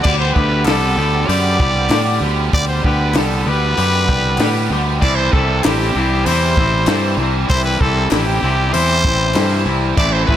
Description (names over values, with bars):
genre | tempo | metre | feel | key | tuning
indie rock | 97 BPM | 4/4 | straight | unclear | A4 = 440 Hz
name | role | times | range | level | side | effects
growling trumpet | melody | 0.0-10.4 s | G4 to D5 | -19 LUFS | equal | tape echo
overdriven electric guitar | riff | 0.0-10.4 s | A2 to G4 | -22 LUFS | right 6 dB | analog chorus
twangy electric guitar | riff | 0.0-10.4 s | A2 to G4 | -22 LUFS | left 8 dB | none
fuzz fingered electric bass | bass | 0.0-10.4 s | A1 to A2 | -18 LUFS | equal | overdrive
compact cocktail drum kit | drums | 0.0-10.4 s | crash cymbal, hi-hat, kick drum, snare drum | -20 LUFS | equal | none
group handclap | percussion | 0.7-9.5 s | none | -28 LUFS | left 8 dB | none
room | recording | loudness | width
small room ambience | none | -13 LUFS | side -10 dB against mid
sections
0.0-10.4 A section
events
none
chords
0.0 G; 5.0 C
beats
| 0.04 0.66 1.28 1.91 | 2.53 3.15 3.77 4.39 | 5.01 5.63 6.25 6.88 | 7.50 8.12 8.74 9.36 | 9.98